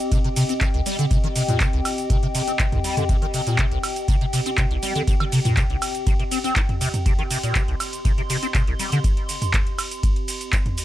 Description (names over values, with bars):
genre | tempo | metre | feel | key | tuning
acid house | 121 BPM | 4/4 | straight | C minor | A4 = 437 Hz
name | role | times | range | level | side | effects
electro analog drum machine | drums | 0.0-10.8 s | cabasa, handclaps, hi-hat, ride cymbal, toms, woodblock | -26 LUFS | right 1 dB | none
warbly tape-like pad | texture | 0.0-10.8 s | C4 to C6 | -29 LUFS | left 2 dB | chorus, built-in reverb, sidechain pumping
liquid acid bass | riff | 0.1-9.0 s | C2 to Eb4 | -24 LUFS | equal | phaser, ensemble chorus, sidechain pumping, tape echo
electronic kick drum | drums | 0.1-10.6 s | none | -21 LUFS | equal | none
room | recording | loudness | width
light reverb | none | -19 LUFS | side -13 dB against mid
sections
0.0-10.8 A section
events
none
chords
0.0 Cm